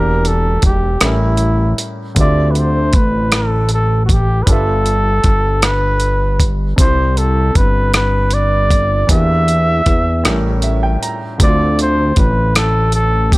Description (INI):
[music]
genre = slow six-eight R&B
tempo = 52 BPM (dotted quarters)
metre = 6/8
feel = straight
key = unclear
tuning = A4 = 440 Hz
[part]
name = breathy flugelhorn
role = melody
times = 0.0-13.4 s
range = E4 to E5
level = -18 LUFS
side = equal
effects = digital delay
[part]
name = warm baby grand piano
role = accompaniment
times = 0.0-13.4 s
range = A2 to Bb5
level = -23 LUFS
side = right 1 dB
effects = none
[part]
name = fat analog bass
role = bass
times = 0.0-13.4 s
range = E1 to E2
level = -15 LUFS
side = equal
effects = none
[part]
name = dusty soul sampler-style drum kit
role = drums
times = 0.2-13.4 s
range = hi-hat, kick drum, rim click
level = -14 LUFS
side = equal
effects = overdrive
[sound]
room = little or no reverb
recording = none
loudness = -12 LUFS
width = side -20 dB against mid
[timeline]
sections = 0.0-13.4 A section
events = grand piano fill 10.2-11.4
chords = 0.0 Em7b5; 1.0 A7b9; 2.2 Dm11; 4.5 G13; 6.8 C; 9.1 Em7b5; 10.2 A7b9; 11.4 Dm7